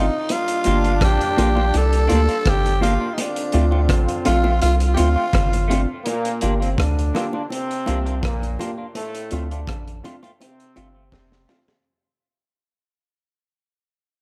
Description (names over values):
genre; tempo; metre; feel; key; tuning
roots reggae; 83 BPM; 4/4; straight; G minor; A4 = 440 Hz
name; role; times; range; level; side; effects
growling tenor saxophone; melody; 0.0-5.7 s; D4 to A4; -25 LUFS; equal; dub echo
semi-hollow electric guitar; accompaniment; 0.0-11.8 s; A3 to F4; -32 LUFS; equal; dub echo
dark upright piano; stabs; 0.0-11.6 s; Bb3 to G4; -28 LUFS; equal; none
soft dub sub bass; bass; 0.0-11.5 s; F1 to D2; -22 LUFS; equal; none
clear trombone section; second line; 0.3-11.6 s; A2 to F4; -30 LUFS; equal; dub echo
crunchy breakbeat drum kit; drums; 0.3-11.8 s; hi-hat, kick drum, rim click, snare drum; -29 LUFS; equal; none
bongos; percussion; 0.3-11.7 s; none; -32 LUFS; equal; none
room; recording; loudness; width
light reverb, studio ambience; echo-heavy mix; -20 LUFS; mono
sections
0.0-6.1 A section; 6.1-11.8 B section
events
fade-out 6.1-11.8; drum fill 11.1-11.8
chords
0.0 Gm7; 9.0 Dm7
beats
| 0.29 1.01 1.74 2.46 | 3.18 3.90 4.62 5.34 | 6.06 6.79 7.51 8.23 | 8.95 9.68 10.40 11.12